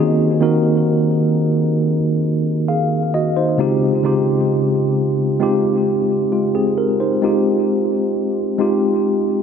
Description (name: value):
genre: R&B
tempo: 66 BPM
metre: 4/4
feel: straight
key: F minor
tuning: A4 = 439 Hz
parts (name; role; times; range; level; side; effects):
- mellow tine electric piano; solo; 0.0-9.4 s; Db3 to F5; -15 LUFS; equal; medium stereo tremolo, ping-pong delay
room: wet cathedral reverb, RT60 4.7 s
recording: dreamy mix soaked in reverb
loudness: -15 LUFS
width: side -7 dB against mid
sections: 0.0-7.2 A section; 7.2-9.4 B section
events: none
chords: 0.0 Ab7/Eb; 3.6 Dbmaj9#11; 5.4 Fm7